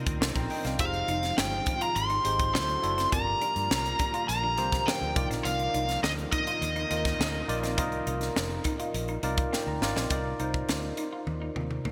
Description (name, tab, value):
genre	polished 1980s jazz-funk pop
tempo	103 BPM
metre	4/4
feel	straight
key	C minor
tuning	A4 = 440 Hz
part	barky tine electric piano	accompaniment	0.0-11.9 s	D4 to C6	-37 LUFS	equal	analog chorus
part	warm studio string section	sustained chords	0.0-10.1 s	D3 to F#4	-43 LUFS	equal	none
part	vintage muted fingered electric bass	bass	0.0-11.9 s	F1 to G2	-36 LUFS	equal	none
part	crisp fusion drum kit	drums	0.1-11.9 s	hi-hat, kick drum, snare drum, toms	-34 LUFS	equal	gated reverb
part	semi-hollow electric guitar	riff	0.2-11.9 s	Bb3 to F4	-42 LUFS	equal	subtle chorus
part	nasal lead guitar with a parked wah	melody	0.8-9.5 s	Eb5 to C6	-32 LUFS	equal	overdrive
room	moderate lush hall reverb, RT60 2.9 s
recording	bright 1980s-style digital production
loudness	-29 LUFS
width	mono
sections	0.0-10.1 A section; 10.1-11.9 B section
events	tine electric piano fill 8.9-10.1; drum fill 9.5-10.1, 11.3-11.9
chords	0.0 Cm11; 0.8 Fm9; 2.5 D7; 3.1 Gm7; 5.2 Cm11